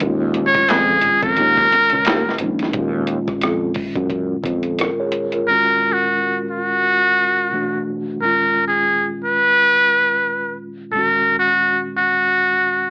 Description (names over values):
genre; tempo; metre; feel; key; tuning
R&B, neo-soul; 88 BPM; 4/4; swing 58% on 16ths; Eb minor; A4 = 436 Hz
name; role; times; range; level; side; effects
mellow tine electric piano; accompaniment; 0.0-12.9 s; Bb2 to Db5; -24 LUFS; equal; medium stereo tremolo
sustaining fretless electric bass; bass; 0.0-4.9 s; Bb1 to Gb2; -21 LUFS; equal; transformer saturation, analog chorus
boom bap sampler-style drum kit; drums; 0.0-5.5 s; handclaps, hi-hat, kick drum, rim click, snare drum; -22 LUFS; equal; overdrive
congas; percussion; 0.4-2.6 s; none; -31 LUFS; equal; none
trumpet with metal mute; melody; 0.5-12.9 s; Gb4 to Db5; -14 LUFS; equal; none
room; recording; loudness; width
moderate studio reverb, RT60 0.6 s; blown-out, overdriven recording, overdrive, AM radio sound; -14 LUFS; side -31 dB against mid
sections
0.0-2.7 A section; 2.7-5.5 B section; 5.5-12.9 C section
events
none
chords
0.0 Eb9sus4; 2.7 Ebm11; 5.5 Ebm7; 7.5 Dadd9; 8.2 Db9; 10.9 Gb69/Bb